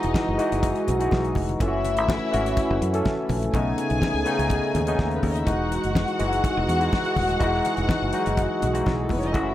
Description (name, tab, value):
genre	disco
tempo	124 BPM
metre	4/4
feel	straight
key	E major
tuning	A4 = 441 Hz
part	dark studio string section	second line	0.0-9.5 s	F#3 to G#5	-28 LUFS	left 1 dB	none
part	barky tine electric piano	accompaniment	0.0-9.5 s	C#3 to A4	-26 LUFS	left 2 dB	overdrive, analog chorus
part	mellow French horn section	sustained chords	0.0-9.5 s	C#3 to F#4	-30 LUFS	right 2 dB	none
part	fingered electric bass	bass	0.0-9.5 s	D#1 to F#2	-27 LUFS	equal	none
part	damped 70s drum kit	drums	0.0-9.5 s	hi-hat, kick drum, snare drum	-27 LUFS	equal	none
part	congas	percussion	0.2-9.5 s	none	-35 LUFS	left 4 dB	none
room	light reverb, small room ambience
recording	none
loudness	-21 LUFS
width	side -13 dB against mid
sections	0.0-9.5 A section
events	none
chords	0.0 Emaj9; 1.6 F#m7; 3.5 B9; 5.5 Emaj9